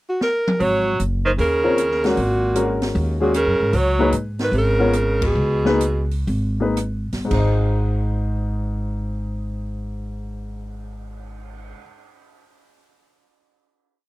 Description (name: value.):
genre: modal jazz.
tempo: 107-154 BPM.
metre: 4/4.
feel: swing 66% on 8ths.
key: Ab mixolydian.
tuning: A4 = 440 Hz.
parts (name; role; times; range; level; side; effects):
mellow alto saxophone; melody; 0.1-6.1 s; Gb4 to Db5; -21 LUFS; equal; none.
open jazz drum kit; drums; 0.2-11.7 s; crash cymbal, cymbal swell, hi-hat, kick drum, ride cymbal, rim click, snare drum, toms; -28 LUFS; equal; none.
clear tenor saxophone; second line; 0.6-6.1 s; Bb2 to Gb3; -23 LUFS; right 3 dB; none.
upright bass; bass; 0.6-11.7 s; Gb1 to Ab2; -22 LUFS; equal; none.
warm baby grand piano; accompaniment; 1.6-11.8 s; Ab2 to Eb5; -23 LUFS; left 2 dB; none.
room: little or no reverb.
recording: dry, close 1970s-style studio recording.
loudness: -18 LUFS.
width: side -18 dB against mid.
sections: 0.0-0.6 pickup bar; 0.6-7.3 A section; 7.3-11.8 final chord.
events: drum fill 0.2-0.6; slowing down 3.7-7.3; band accent 5.1.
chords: 0.0 N.C.; 0.6 Ab9sus4; 3.7 Db7(no3); 7.3 Ab.